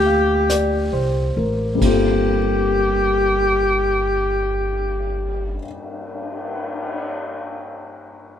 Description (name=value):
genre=jazz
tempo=44 BPM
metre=4/4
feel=swing 67% on 8ths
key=G minor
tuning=A4 = 440 Hz
part: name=breathy tenor saxophone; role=melody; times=0.0-5.6 s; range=G4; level=-19 LUFS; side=left 1 dB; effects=none
part: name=dark baby grand piano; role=accompaniment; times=0.0-8.4 s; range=G2 to F5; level=-24 LUFS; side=left 3 dB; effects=none
part: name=upright bass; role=bass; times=0.0-5.6 s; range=G1 to D2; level=-23 LUFS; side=equal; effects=none
part: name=vintage brush drum kit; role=drums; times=0.5-7.0 s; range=brushed snare drum, cymbal swell, hi-hat, kick drum, ride cymbal, snare drum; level=-28 LUFS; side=equal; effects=none
room=little or no reverb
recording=minimal, uncompressed stereo recording, lossy compression artefacts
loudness=-18 LUFS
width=side -9 dB against mid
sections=0.0-1.8 A section; 1.8-7.2 B section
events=slowing down 0.0-1.8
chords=0.0 Gm11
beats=0.49 | 1.82 3.17 4.52 5.88